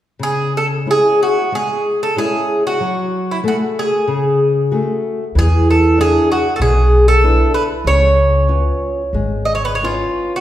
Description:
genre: fado-style ballad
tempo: 94 BPM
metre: 4/4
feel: uneven beats, rubato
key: unclear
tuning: A4 = 440 Hz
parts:
  - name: Irish bouzouki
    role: melody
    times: 0.2-10.4 s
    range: E4 to D#5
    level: -16 LUFS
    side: equal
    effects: none
  - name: nylon-string guitar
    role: accompaniment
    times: 0.2-10.4 s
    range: B2 to B4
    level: -20 LUFS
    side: left 1 dB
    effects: none
  - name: upright bass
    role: bass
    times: 5.4-10.0 s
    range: G#1 to E2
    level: -15 LUFS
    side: equal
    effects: none
room: wet recital hall reverb, RT60 1.8 s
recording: heard from further back in the room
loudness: -13 LUFS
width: side -12 dB against mid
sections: 0.2-10.4 A section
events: none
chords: 0.2 C#m; 2.8 F#madd9; 5.4 E7; 7.9 C#7

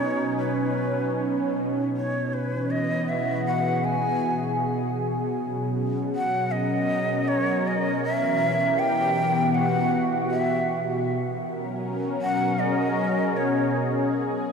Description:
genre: ambient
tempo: 79 BPM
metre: 4/4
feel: straight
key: unclear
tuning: A4 = 441 Hz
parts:
  - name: breathy bright shakuhachi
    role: melody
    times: 0.0-13.9 s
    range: B4 to G#5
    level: -26 LUFS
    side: right 1 dB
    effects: tape echo
  - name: warm analog pad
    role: sustained chords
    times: 0.0-14.5 s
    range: B2 to A#4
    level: -24 LUFS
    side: equal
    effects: chorus
room: wet cathedral reverb, RT60 7.1 s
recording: in a vast, echoing space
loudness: -22 LUFS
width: side -6 dB against mid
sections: 0.0-1.9 A section; 1.9-14.5 B section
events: none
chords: 0.0 Badd9; 1.9 Eadd9/B; 5.0 F#6/B; 8.0 Em/B; 11.1 F#6/B

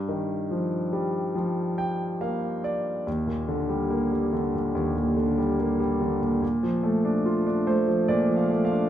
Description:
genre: pop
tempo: 71 BPM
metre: 4/4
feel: straight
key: unclear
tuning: A4 = 440 Hz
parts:
  - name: clear concert grand piano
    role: solo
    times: 0.0-8.9 s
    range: Eb2 to G5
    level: -23 LUFS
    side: equal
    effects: none
room: wet large studio reverb, RT60 0.9 s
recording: band playing live in one room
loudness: -23 LUFS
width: side -11 dB against mid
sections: 0.0-3.1 A section; 3.1-8.9 B section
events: grand piano fill 1.3-3.1, 7.3-8.9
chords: 0.0 Ebadd9/G; 3.1 Ebmaj7; 6.4 Bbmaj7

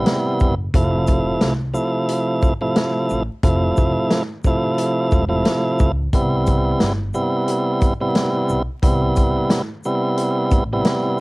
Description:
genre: hip hop, boom-bap hip-hop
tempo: 89 BPM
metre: 4/4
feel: swing 57% on 16ths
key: C major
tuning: A4 = 440 Hz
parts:
  - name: tonewheel organ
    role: accompaniment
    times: 0.0-11.2 s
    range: C3 to E4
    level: -19 LUFS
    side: right 1 dB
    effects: overdrive, high-pass filter, low-pass filter, cassette tape
  - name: upright bass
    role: bass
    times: 0.0-10.8 s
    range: E1 to Db2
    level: -23 LUFS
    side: equal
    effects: none
  - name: vintage drum kit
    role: drums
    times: 0.1-11.0 s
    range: hi-hat, kick drum, shaker, snare drum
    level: -20 LUFS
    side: equal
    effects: none
room: little or no reverb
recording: home recording on cassette, vinyl crackle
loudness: -16 LUFS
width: side -24 dB against mid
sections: 0.0-11.2 A section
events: none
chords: 0.0 Cmaj7; 0.7 Fmaj7; 6.1 Cmaj7

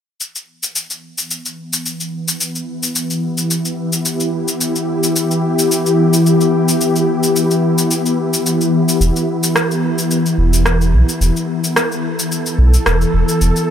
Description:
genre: organic downtempo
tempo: 109 BPM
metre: 4/4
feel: swing 54% on 16ths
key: E minor pentatonic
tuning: A4 = 440 Hz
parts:
  - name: ethereal airy pad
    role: sustained chords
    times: 1.8-13.7 s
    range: E3 to A4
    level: -16 LUFS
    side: left 1 dB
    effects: ensemble chorus, built-in reverb
  - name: electronic cabasa and rim click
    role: drums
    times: 0.2-13.7 s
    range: none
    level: -19 LUFS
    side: left 1 dB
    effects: overdrive
  - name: round analog bass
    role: bass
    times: 9.0-13.5 s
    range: E1 to B1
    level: -13 LUFS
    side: equal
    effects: tube saturation
room: light reverb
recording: none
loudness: -14 LUFS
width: side -9 dB against mid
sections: 0.2-13.7 A section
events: filter sweep on ambient pad 0.2-13.7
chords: 0.2 Em

